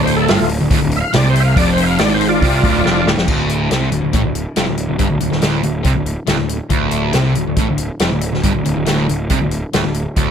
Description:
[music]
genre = classic rock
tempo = 139 BPM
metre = 4/4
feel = straight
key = D minor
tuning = A4 = 441 Hz
[part]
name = overdriven tonewheel organ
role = melody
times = 0.0-3.1 s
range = A3 to F5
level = -17 LUFS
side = equal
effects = slow rotary speaker, chorus vibrato
[part]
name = sludgy distorted guitar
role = riff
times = 0.0-10.3 s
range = D2 to C3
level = -19 LUFS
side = left 9 dB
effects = overdrive
[part]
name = sludgy distorted guitar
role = riff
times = 0.0-10.3 s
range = D2 to C3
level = -19 LUFS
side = right 10 dB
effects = overdrive
[part]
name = fuzz picked electric bass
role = bass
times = 0.0-10.3 s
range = D1 to C2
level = -21 LUFS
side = equal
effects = overdrive
[part]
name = vintage drum kit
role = drums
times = 0.1-10.3 s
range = crash cymbal, hi-hat, kick drum, snare drum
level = -19 LUFS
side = equal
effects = none
[sound]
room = moderate studio ambience, RT60 0.5 s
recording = none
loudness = -13 LUFS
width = side -8 dB against mid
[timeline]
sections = 0.0-3.3 A section; 3.3-10.3 B section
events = tonewheel organ solo 0.0-3.3; drum fill 2.8-3.3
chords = 0.0 Dm; 3.3 N.C.

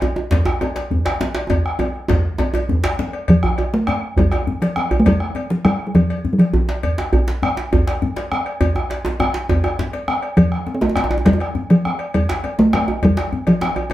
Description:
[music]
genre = west african traditional, West African drum ensemble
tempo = 135 BPM (dotted quarters)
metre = 12/8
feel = straight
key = F major pentatonic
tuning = A4 = 440 Hz
[part]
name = cowbell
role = percussion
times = 0.0-13.9 s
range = none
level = -29 LUFS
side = left 2 dB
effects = none
[part]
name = djembe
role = percussion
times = 0.0-13.9 s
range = none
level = -25 LUFS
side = left 3 dB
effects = none
[part]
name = djembe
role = percussion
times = 0.0-13.9 s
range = none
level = -21 LUFS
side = right 1 dB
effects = none
[part]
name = bombo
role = percussion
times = 0.3-13.8 s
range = none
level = -21 LUFS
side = equal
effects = none
[part]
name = talking drum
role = melody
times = 3.3-6.7, 10.4-13.8 s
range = F3 to C4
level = -16 LUFS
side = equal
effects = none
[sound]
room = wet studio reverb, RT60 0.6 s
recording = heard from further back in the room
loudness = -16 LUFS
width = side -14 dB against mid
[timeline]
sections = 0.0-3.3 A section; 3.3-13.9 B section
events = drum fill 1.5-3.3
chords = none

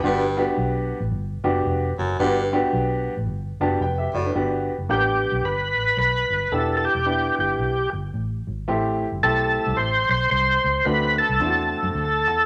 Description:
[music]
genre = soul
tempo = 111 BPM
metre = 4/4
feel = swing 61% on 8ths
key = G major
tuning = A4 = 438 Hz
[part]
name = clear baby grand piano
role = accompaniment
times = 0.0-12.1 s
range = A3 to A5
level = -26 LUFS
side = equal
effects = none
[part]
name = edgy baritone saxophone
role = riff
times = 0.0-4.3 s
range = F#2 to A2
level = -29 LUFS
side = equal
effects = none
[part]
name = vintage muted fingered electric bass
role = bass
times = 0.0-12.5 s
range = E1 to F#2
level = -29 LUFS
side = equal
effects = none
[part]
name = overdriven tonewheel organ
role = melody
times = 4.9-12.5 s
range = G4 to C5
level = -23 LUFS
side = equal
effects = chorus vibrato, slow rotary speaker
[sound]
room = wet large studio reverb, RT60 1.1 s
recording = none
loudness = -22 LUFS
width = mono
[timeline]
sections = 0.0-4.3 A section; 4.3-12.5 B section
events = grand piano fill 3.3-4.3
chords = 0.0 Gmaj7; 6.5 Em7; 8.7 Am7; 10.8 D7

